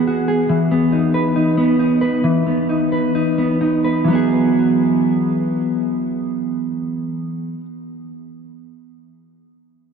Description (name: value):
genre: dream pop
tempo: 63-71 BPM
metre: 4/4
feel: straight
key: E major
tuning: A4 = 442 Hz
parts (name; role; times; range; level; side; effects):
- mellow electric guitar; arpeggios; 0.0-7.7 s; E3 to B4; -16 LUFS; equal; wide subtle chorus, tape echo
room: wet huge ambient reverb, RT60 4.9 s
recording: dark, warm production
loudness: -15 LUFS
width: side -6 dB against mid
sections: 0.0-4.1 A section; 4.1-7.9 B section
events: slowing down 0.0-4.1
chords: 0.5 B/E; 4.1 Eadd9